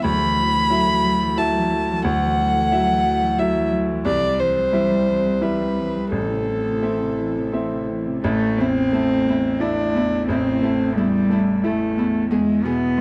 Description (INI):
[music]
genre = neoclassical piano and strings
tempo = 89 BPM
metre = 3/4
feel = rubato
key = A dorian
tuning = A4 = 441 Hz
[part]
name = dark violin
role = melody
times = 0.0-12.7 s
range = E4 to B5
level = -24 LUFS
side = equal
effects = none
[part]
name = warm cello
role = second line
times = 0.0-13.0 s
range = C3 to D4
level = -26 LUFS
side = equal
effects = none
[part]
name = bright grand piano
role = accompaniment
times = 0.0-13.0 s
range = A1 to E5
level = -24 LUFS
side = equal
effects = none
[part]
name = airy breathy pad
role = sustained chords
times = 0.0-13.0 s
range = F#3 to E5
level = -34 LUFS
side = equal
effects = none
[sound]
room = small room ambience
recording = dry, close 1970s-style studio recording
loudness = -20 LUFS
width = mono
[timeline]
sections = 0.0-8.2 A section; 8.2-13.0 B section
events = none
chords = 0.0 Dadd9; 4.1 C; 6.1 Am; 12.3 E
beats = | 0.04 0.71 1.38 | 2.05 2.72 3.39 | 4.06 4.73 5.43 | 6.13 6.84 7.54 | 8.25 8.93 9.61 | 10.29 10.96 11.64 | 12.31 12.97